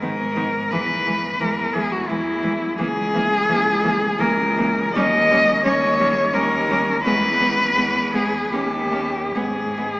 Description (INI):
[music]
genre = classical, lyrical piece for cello ensemble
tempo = 69-88 BPM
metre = 3/4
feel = rubato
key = unclear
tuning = A4 = 443 Hz
[part]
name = rich cello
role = melody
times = 0.0-10.0 s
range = E4 to D#5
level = -19 LUFS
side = left 1 dB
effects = none
[part]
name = clear cello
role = second line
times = 0.0-9.9 s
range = G#3 to C#4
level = -28 LUFS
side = right 1 dB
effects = none
[part]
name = rich cello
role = accompaniment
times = 0.0-9.9 s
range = D#3 to A#3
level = -27 LUFS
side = equal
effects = none
[part]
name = clear cello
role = bass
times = 0.0-10.0 s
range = C#2 to G#2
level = -26 LUFS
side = equal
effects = none
[sound]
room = wet cathedral reverb, RT60 5.2 s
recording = recorded in a church or concert hall, small speaker sound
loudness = -17 LUFS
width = side -21 dB against mid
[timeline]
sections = 0.0-10.0 A section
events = none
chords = 0.0 G#m; 0.7 E; 2.8 A#dim/C#; 5.0 D#7; 7.1 E; 8.5 D#; 9.4 N.C.